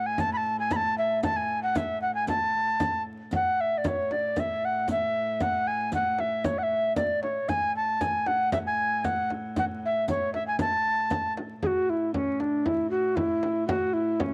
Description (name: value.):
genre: medieval dance.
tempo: 116 BPM.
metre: 2/4.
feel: straight.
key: A major.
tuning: A4 = 440 Hz.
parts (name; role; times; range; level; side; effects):
mellow tenor recorder; melody; 0.0-14.3 s; C#4 to B5; -28 LUFS; equal; cassette tape.
clear viola da gamba; drone; 0.0-14.3 s; A2; -41 LUFS; equal; cassette tape.
frame drum; percussion; 0.2-14.3 s; none; -35 LUFS; equal; none.
riq; percussion; 0.2-11.3 s; none; -42 LUFS; equal; none.
room: moderate spring reverb, RT60 2.7 s.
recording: home recording on cassette, vinyl crackle.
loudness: -27 LUFS.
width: mono.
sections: 0.0-3.3 A section; 3.3-11.6 B section; 11.6-14.3 B section.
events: none.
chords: none.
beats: | 0.18 0.70 | 1.23 1.75 | 2.27 2.80 | 3.32 3.84 | 4.36 4.88 | 5.41 5.92 | 6.45 6.96 | 7.48 8.00 | 8.52 9.04 | 9.55 10.07 | 10.59 11.10 | 11.62 12.13 | 12.65 13.16 | 13.68 14.19.